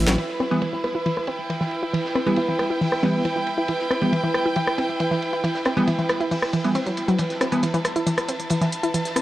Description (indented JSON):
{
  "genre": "driving peak-time techno",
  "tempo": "137 BPM",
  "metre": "4/4",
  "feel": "straight",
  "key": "E minor",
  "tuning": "A4 = 445 Hz",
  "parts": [
    { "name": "dark chamber string section", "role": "texture", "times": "0.0-9.2 s", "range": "E4 to A5", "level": "-26 LUFS", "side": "right 1 dB", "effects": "none" },
    { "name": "analog pluck", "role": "riff", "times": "0.1-9.2 s", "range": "E3 to E4", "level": "-25 LUFS", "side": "equal", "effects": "chorus, analog delay" },
    { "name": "techno drum kit", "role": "drums", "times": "0.1-9.2 s", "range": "hi-hat, rim click, shaker, snare drum", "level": "-27 LUFS", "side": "equal", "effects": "low-pass filter on hats, low-pass filter on cymbals, low-pass filter on perc, low-pass filter on snare, low-pass filter on room" },
    { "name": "oversized low-tuned drum kit", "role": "drums", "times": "0.2-9.2 s", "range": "hi-hat, ride cymbal, snare drum", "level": "-36 LUFS", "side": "right 2 dB", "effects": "high-pass filter on cymbals, low-pass filter on cymbals, high-pass filter on hats, low-pass filter on hats, high-pass filter on snare, low-pass filter on snare, high-pass filter on room, low-pass filter on room" },
    { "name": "wavetable chord stab", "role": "stabs", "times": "0.5-7.6 s", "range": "E3 to B3", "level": "-25 LUFS", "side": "equal", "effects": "analog delay" }
  ],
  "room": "moderate lush hall reverb, RT60 2.1 s",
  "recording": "dry, gritty hardware recording",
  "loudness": "-20 LUFS",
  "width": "side -15 dB against mid",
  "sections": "0.2-9.2 A section",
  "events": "drum fill 0.0; band accent 0.1; filter sweep on drum 0.2-9.2",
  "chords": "0.2 Em"
}